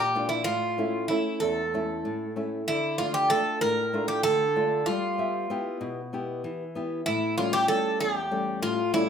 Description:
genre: greek folk, Greek bouzouki band.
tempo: 191 BPM (eighths).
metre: 7/8.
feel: straight.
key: unclear.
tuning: A4 = 440 Hz.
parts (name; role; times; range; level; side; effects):
Greek bouzouki; melody; 0.0-9.1 s; E4 to Bb4; -25 LUFS; right 1 dB; none.
nylon-string guitar; accompaniment; 0.0-9.1 s; E2 to E5; -30 LUFS; left 2 dB; none.
room: wet studio reverb, RT60 0.5 s.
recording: rough home demo mix.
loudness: -25 LUFS.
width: side -7 dB against mid.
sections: 0.0-9.1 A section.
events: none.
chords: 0.5 A; 2.7 Dm; 4.9 Em; 7.1 A7.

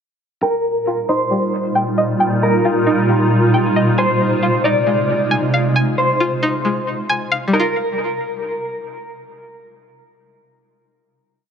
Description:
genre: hip hop, atmospheric cloud-rap.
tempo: 135 BPM.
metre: 4/4.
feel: half-time.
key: Eb major.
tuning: A4 = 439 Hz.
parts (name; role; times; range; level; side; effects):
mellow electric guitar; melody; 0.4-8.8 s; Bb4 to D5; -20 LUFS; left 1 dB; tremolo, low-pass filter, analog delay.
granular cloud pad; sustained chords; 1.1-5.7 s; Bb2 to F4; -18 LUFS; right 1 dB; built-in reverb, low-pass filter.
string-like resonator pluck; arpeggios; 0.4-11.5 s; G3 to Ab5; -20 LUFS; equal; chorus, phaser, low-pass filter, analog delay.
room: light reverb, digital ambience.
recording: echo-heavy mix.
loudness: -15 LUFS.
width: side -7 dB against mid.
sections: 0.4-7.5 breakdown; 7.5-11.1 final chord.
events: filter sweep 0.4-7.5.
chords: 0.4 Ebadd9; 4.0 Fm7; 7.5 Ebadd9.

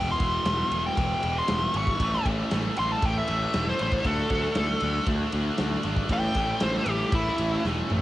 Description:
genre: hard rock.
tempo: 117 BPM.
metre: 4/4.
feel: straight.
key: unclear.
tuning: A4 = 442 Hz.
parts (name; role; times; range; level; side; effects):
smooth overdriven lead guitar; melody; 0.0-7.6 s; E4 to C#6; -28 LUFS; equal; cassette tape.
distorted electric guitar; riff; 0.0-8.0 s; E2 to D4; -33 LUFS; left 8 dB; overdrive, cassette tape.
high-gain distorted guitar; riff; 0.0-8.0 s; E2 to D4; -34 LUFS; right 9 dB; distortion, cassette tape.
fuzz picked electric bass; bass; 0.0-8.0 s; E1 to D2; -29 LUFS; equal; overdrive.
big rock drum kit; drums; 0.2-8.0 s; kick drum, ride cymbal, snare drum, toms; -30 LUFS; equal; vintage 12-bit sampler grit.
room: light reverb.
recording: home recording on cassette.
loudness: -23 LUFS.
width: side -15 dB against mid.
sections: 0.0-8.0 A section.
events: lead electric guitar solo 0.0-8.0; drum fill 7.6-8.0.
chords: 0.0 E5; 2.0 A5; 4.1 D5; 6.1 A5.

